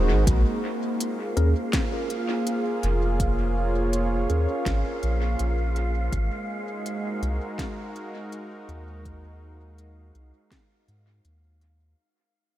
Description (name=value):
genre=ambient dub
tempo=82 BPM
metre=4/4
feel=swing 54% on 16ths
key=Bb minor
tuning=A4 = 440 Hz
part: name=warm analog pad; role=sustained chords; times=0.0-12.0 s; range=Ab3 to Db5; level=-29 LUFS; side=right 1 dB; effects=chorus
part: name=tine electric piano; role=stabs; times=0.0-6.1 s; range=Db4 to Bb4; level=-34 LUFS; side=left 1 dB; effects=overdrive, medium stereo tremolo, dub echo
part: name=soft dub sub bass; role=bass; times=0.0-11.9 s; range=Eb1 to Ab2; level=-24 LUFS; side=equal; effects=none
part: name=electronic kick drum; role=drums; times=0.3-10.7 s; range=none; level=-28 LUFS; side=equal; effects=none
part: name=organic electronic drum kit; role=drums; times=0.3-11.8 s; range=hi-hat, snare drum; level=-35 LUFS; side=left 1 dB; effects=dub echo
part: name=wind-like tuned noise texture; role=texture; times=0.9-12.0 s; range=F5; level=-37 LUFS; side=right 2 dB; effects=built-in reverb
room=moderate huge ambient reverb, RT60 7.3 s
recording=dreamy mix soaked in reverb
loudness=-23 LUFS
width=side -14 dB against mid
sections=0.3-12.0 A section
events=break 0.0; fade-out 0.3-12.0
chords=0.3 Bbm7; 6.1 Ab7